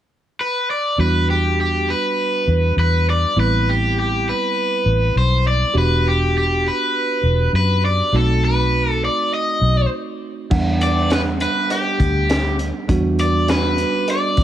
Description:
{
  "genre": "straight-eighth soul blues",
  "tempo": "101 BPM",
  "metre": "4/4",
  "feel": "swing 54% on 16ths",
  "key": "E minor",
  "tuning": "A4 = 440 Hz",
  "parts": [
    { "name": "cranked stack guitar", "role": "melody", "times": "0.4-14.4 s", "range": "G4 to D#5", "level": "-20 LUFS", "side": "left 1 dB", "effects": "overdrive" },
    { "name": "bell-like tine electric piano", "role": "accompaniment", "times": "1.0-14.4 s", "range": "G3 to F#5", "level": "-24 LUFS", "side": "right 5 dB", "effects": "none" },
    { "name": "vintage muted fingered electric bass", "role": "bass", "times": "1.0-14.4 s", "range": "E1 to F#2", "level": "-18 LUFS", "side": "left 1 dB", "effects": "none" },
    { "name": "crunchy breakbeat drum kit", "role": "drums", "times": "10.5-14.4 s", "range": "crash cymbal, hi-hat, kick drum, snare drum", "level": "-22 LUFS", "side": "left 1 dB", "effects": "none" }
  ],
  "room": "light reverb",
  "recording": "none",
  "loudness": "-16 LUFS",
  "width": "side -11 dB against mid",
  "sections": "1.0-10.5 A section; 10.5-14.4 B section",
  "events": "break 9.9-10.5",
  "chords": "0.0 N.C.; 1.0 Em9; 3.4 Am9; 5.7 Em9; 8.1 B7b9; 10.5 Em7"
}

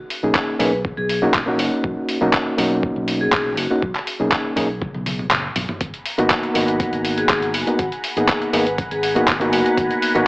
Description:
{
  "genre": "nu-disco, nu disco",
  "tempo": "121 BPM",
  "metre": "4/4",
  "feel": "straight",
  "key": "unclear",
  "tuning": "A4 = 440 Hz",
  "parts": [
    { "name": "dusty soul sampler-style drum kit", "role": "drums", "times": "0.1-10.2 s", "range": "handclaps, hi-hat, toms", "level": "-21 LUFS", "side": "equal", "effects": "overdrive" },
    { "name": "overdriven reed electric piano", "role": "accompaniment", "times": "0.2-10.3 s", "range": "A#3 to G#4", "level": "-20 LUFS", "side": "equal", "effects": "sidechain pumping" },
    { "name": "fingered electric bass", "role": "bass", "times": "0.2-10.2 s", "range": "F#1 to B1", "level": "-29 LUFS", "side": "equal", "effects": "none" },
    { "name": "vibraphone with medium hard mallets", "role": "melody", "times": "0.3-9.7 s", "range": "F#4 to B4", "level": "-25 LUFS", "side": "left 1 dB", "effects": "tape echo" },
    { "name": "electronic kick drum", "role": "drums", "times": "0.4-9.9 s", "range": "none", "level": "-28 LUFS", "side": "equal", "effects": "overdrive" },
    { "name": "lush unison pad", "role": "sustained chords", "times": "6.2-10.3 s", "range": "F#5 to B5", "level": "-26 LUFS", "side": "equal", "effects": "chorus, phaser, sidechain pumping" }
  ],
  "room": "light reverb",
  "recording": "AM radio sound",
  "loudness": "-17 LUFS",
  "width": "side -24 dB against mid",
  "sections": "0.0-10.3 A section",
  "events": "drum fill 4.8-5.8; kick drops out 5.3-5.8",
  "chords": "0.0 Bmaj7; 5.8 G#m9"
}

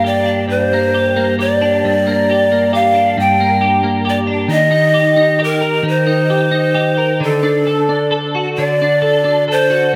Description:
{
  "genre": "pop",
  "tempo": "44 BPM (dotted quarters)",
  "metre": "6/8",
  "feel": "straight",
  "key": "G minor",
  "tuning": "A4 = 439 Hz",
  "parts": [
    { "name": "breathy bright large pan pipes", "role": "melody", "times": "0.0-9.9 s", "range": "A4 to G5", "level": "-16 LUFS", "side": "equal", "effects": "diffuse ambient delay" },
    { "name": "twelve-string electric guitar", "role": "accompaniment", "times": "0.0-10.0 s", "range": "G2 to Bb4", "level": "-18 LUFS", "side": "equal", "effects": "ensemble chorus" }
  ],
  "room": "wet plate reverb, RT60 2.8 s",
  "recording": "dreamy mix soaked in reverb",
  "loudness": "-14 LUFS",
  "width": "mono",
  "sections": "0.0-9.9 A section",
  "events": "none",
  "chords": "0.0 Gm; 4.5 Eb6; 7.2 D"
}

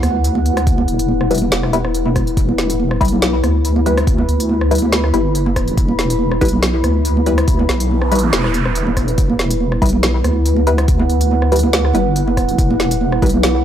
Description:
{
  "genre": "deep dubstep",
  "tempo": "141 BPM",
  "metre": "4/4",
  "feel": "swing 53% on 16ths, half-time",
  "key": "E minor",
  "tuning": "A4 = 437 Hz",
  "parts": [
    { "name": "deep dark ambient pad", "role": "sustained chords", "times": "0.0-13.6 s", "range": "E4 to B5", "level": "-20 LUFS", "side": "equal", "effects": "chorus, built-in reverb" },
    { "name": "deep soft wobble bass", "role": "bass", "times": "0.0-13.6 s", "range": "E1 to D2", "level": "-17 LUFS", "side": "equal", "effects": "chorus" },
    { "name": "deep house drum kit", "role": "drums", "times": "0.0-13.5 s", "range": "hi-hat, rim click, snare drum", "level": "-21 LUFS", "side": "equal", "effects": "studio reverb" },
    { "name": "congas", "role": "percussion", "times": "0.0-13.4 s", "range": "none", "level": "-22 LUFS", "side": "right 4 dB", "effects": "dub echo" },
    { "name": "electronic kick drum", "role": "drums", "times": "0.7-13.3 s", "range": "none", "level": "-17 LUFS", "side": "equal", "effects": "studio reverb" },
    { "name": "filtered dub chord stab", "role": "stabs", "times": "1.3-13.3 s", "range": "G3 to B4", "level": "-22 LUFS", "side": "left 2 dB", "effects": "phaser, wide subtle chorus, dub echo" },
    { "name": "noise sweep", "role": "sound effects", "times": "7.8-9.2 s", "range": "none", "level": "-26 LUFS", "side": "right 7 dB", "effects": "none" }
  ],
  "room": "digital ambience",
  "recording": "dry, gritty hardware recording",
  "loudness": "-13 LUFS",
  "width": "side -10 dB against mid",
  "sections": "0.0-13.6 A section",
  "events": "noise sweep 7.8-9.2",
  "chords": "0.0 Em"
}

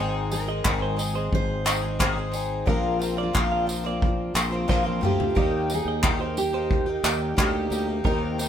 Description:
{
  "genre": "acoustic pop",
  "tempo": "89 BPM",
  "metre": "4/4",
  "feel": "straight",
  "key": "Eb major",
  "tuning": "A4 = 439 Hz",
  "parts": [
    { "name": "picked twelve-string acoustic guitar", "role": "accompaniment", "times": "0.0-8.5 s", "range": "Ab2 to Ab4", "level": "-29 LUFS", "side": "left 3 dB", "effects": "none" },
    { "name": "direct-recorded clean electric guitar", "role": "arpeggios", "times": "0.0-8.2 s", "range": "Bb4 to F5", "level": "-34 LUFS", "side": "right 7 dB", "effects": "none" },
    { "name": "sustaining fretless electric bass", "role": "bass", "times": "0.0-8.5 s", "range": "Ab1 to Eb2", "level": "-29 LUFS", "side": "equal", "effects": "none" },
    { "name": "picked steel-string acoustic guitar", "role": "melody", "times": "0.3-8.5 s", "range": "F4 to C5", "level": "-29 LUFS", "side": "right 1 dB", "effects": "none" },
    { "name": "unplugged drum kit", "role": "drums", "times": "0.3-8.5 s", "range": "handclaps, kick drum, snare drum, tambourine, toms", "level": "-25 LUFS", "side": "equal", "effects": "none" },
    { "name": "tonewheel organ", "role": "sustained chords", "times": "5.4-8.5 s", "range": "Bb3 to G5", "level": "-38 LUFS", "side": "right 1 dB", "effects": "chorus vibrato, slow rotary speaker" }
  ],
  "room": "light reverb",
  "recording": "band playing live in one room",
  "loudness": "-22 LUFS",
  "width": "side -9 dB against mid",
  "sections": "0.0-5.4 A section; 5.4-8.5 B section",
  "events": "drum fill 4.7-5.4",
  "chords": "0.0 Ab; 2.7 Bbadd9; 5.4 Eb"
}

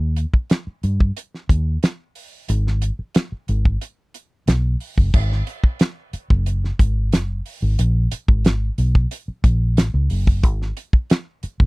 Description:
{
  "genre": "lush 1970s-style soul",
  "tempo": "91 BPM",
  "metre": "4/4",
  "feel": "straight",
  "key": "F# major",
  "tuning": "A4 = 440 Hz",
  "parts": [
    { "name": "vintage muted fingered electric bass", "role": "bass", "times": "0.0-11.7 s", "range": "F#1 to G2", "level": "-19 LUFS", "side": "equal", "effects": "tube saturation" },
    { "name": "damped 70s drum kit", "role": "drums", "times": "0.2-11.7 s", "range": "crash cymbal, hi-hat, kick drum, snare drum", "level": "-16 LUFS", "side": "equal", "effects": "none" }
  ],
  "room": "little or no reverb",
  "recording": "dry, close 1970s-style studio recording",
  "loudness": "-17 LUFS",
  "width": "side -25 dB against mid",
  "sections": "0.0-5.1 A section; 5.1-11.7 B section",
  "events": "none",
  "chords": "none"
}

